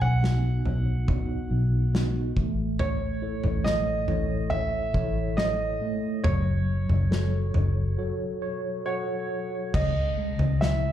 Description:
pop ballad; 69 BPM; 4/4; straight; A4 = 438 Hz
clear grand piano; melody; 0.0-10.9 s; C#5 to F#5; -32 LUFS; right 3 dB; plate reverb, slapback echo, ping-pong delay
bright tine electric piano; accompaniment; 0.0-10.9 s; B2 to F#5; -31 LUFS; equal; medium stereo tremolo, plate reverb, slapback echo
vintage muted fingered electric bass; bass; 0.0-10.9 s; F#1 to C#2; -26 LUFS; left 1 dB
loose indie drum kit; drums; 0.0-10.8 s; crash cymbal, kick drum, snare drum, toms; -29 LUFS; equal
light reverb; live gig heard through the venue's PA, club reverb; -24 LUFS; side -11 dB against mid
0.0-9.7 A section; 9.7-10.9 B section
break 8.0-9.7; tine electric piano fill 8.0-9.7
0.0 B; 2.4 A; 6.2 F#m; 9.7 C#madd9

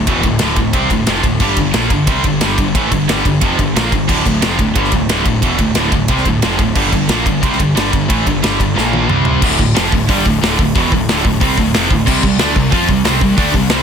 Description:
heavy metal; 180 BPM; 4/4; straight; D minor; A4 = 439 Hz
high-gain distorted guitar; riff; 0.0-13.8 s; D2 to F4; -17 LUFS; right 12 dB; distortion
scooped high-gain guitar; riff; 0.0-13.8 s; D2 to F4; -17 LUFS; left 9 dB; distortion
fuzz picked electric bass; bass; 0.0-13.8 s; D1 to F2; -21 LUFS; equal; overdrive
big rock drum kit; drums; 0.1-13.8 s; crash cymbal, hi-hat, kick drum, ride cymbal, snare drum, toms; -16 LUFS; equal
distorted electric guitar; riff; 12.1-13.8 s; C3 to F4; -20 LUFS; equal; distortion
small room ambience; dense, heavily limited modern master; -11 LUFS; side -7 dB against mid
0.0-9.4 A section; 9.4-13.8 B section
drum fill 8.8-9.4
0.0 Dm; 1.4 G5; 4.1 Dm; 6.8 G5; 8.8 Bb5; 9.1 C5; 9.4 Dm; 12.1 C5

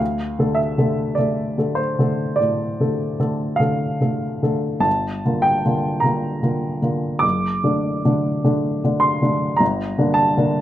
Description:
classical, romantic nocturne for solo piano; 50 BPM; 4/4; rubato; D minor; A4 = 441 Hz
warm baby grand piano; solo; 0.0-10.6 s; F#1 to D6; -18 LUFS; equal
light reverb; -18 LUFS; side -12 dB against mid
0.0-10.6 A section
0.0 Dm; 4.9 Gm7; 7.2 D/F#; 9.6 Gm

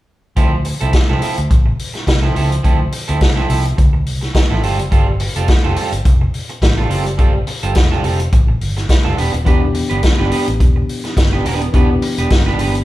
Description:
disco; 106 BPM; 4/4; swing 56% on 16ths; D dorian; A4 = 440 Hz
electric guitar at the edge of break-up; accompaniment; 0.4-12.8 s; F3 to B4; -22 LUFS; right 4 dB
vintage muted fingered electric bass; bass; 0.4-12.8 s; Eb1 to D2; -19 LUFS; equal
vintage drum kit; drums; 0.4-12.8 s; hi-hat, kick drum, snare drum; -15 LUFS; equal
tine electric piano; accompaniment; 9.4-12.8 s; E3 to G4; -21 LUFS; left 3 dB; overdrive
moderate large studio reverb, RT60 0.9 s; band playing live in one room; -13 LUFS; side -16 dB against mid
0.4-12.8 A section
0.4 Dm9; 4.6 G9sus4; 9.2 Em7

